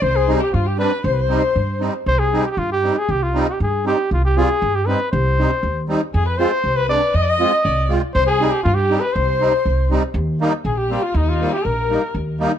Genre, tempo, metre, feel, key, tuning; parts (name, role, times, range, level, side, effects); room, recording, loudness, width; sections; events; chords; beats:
klezmer; 119 BPM; 2/4; straight; C harmonic minor; A4 = 440 Hz
warm cornet; melody; 0.0-12.1 s; Eb4 to Eb5; -20 LUFS; equal
warm violin; second line; 0.0-1.8, 6.1-12.1 s; Eb4 to Eb5; -22 LUFS; left 6 dB; tape echo
upright bass; bass; 0.0-12.4 s; Bb1 to G2; -20 LUFS; equal
musette accordion; accompaniment; 0.3-12.5 s; G3 to F4; -21 LUFS; right 2 dB
light reverb; dark, warm production; -16 LUFS; side -9 dB against mid
0.0-2.1 A section; 2.1-10.1 A section; 10.1-12.6 B section
speeding up 0.0-12.6
0.0 Cm; 6.1 Fm; 8.1 Cm; 10.1 Eb
| 0.02 0.53 | 1.04 1.56 | 2.07 2.58 | 3.09 3.60 | 4.11 4.61 | 5.12 5.63 | 6.13 6.64 | 7.14 7.64 | 8.15 8.65 | 9.15 9.65 | 10.15 10.65 | 11.15 11.64 | 12.14